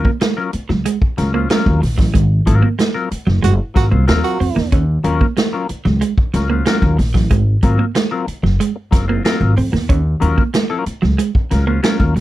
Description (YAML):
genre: funk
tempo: 93 BPM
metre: 4/4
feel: straight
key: Eb dorian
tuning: A4 = 440 Hz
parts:
  - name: mellow electric guitar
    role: accompaniment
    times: 0.0-12.2 s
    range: Gb3 to C5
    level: -21 LUFS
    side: left 5 dB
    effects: wah
  - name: swinging big-band drum kit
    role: drums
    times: 0.0-12.2 s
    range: hi-hat, kick drum, snare drum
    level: -17 LUFS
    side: equal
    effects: none
  - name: clean electric guitar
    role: riff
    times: 0.1-12.2 s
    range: Gb3 to Db4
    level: -20 LUFS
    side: right 6 dB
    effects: none
  - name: upright bass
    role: bass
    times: 0.5-12.2 s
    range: Gb1 to F2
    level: -15 LUFS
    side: equal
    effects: none
  - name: breathy tenor saxophone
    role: second line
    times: 3.4-4.7 s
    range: Gb4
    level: -21 LUFS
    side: right 9 dB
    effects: none
room: little or no reverb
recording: none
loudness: -13 LUFS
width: side -15 dB against mid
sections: 0.0-12.2 A section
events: band accent 2.1-4.7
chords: 0.0 Ebm9 (rootless); 2.1 Ab13; 4.7 Ebm9; 7.3 Ab13; 9.9 Ebm9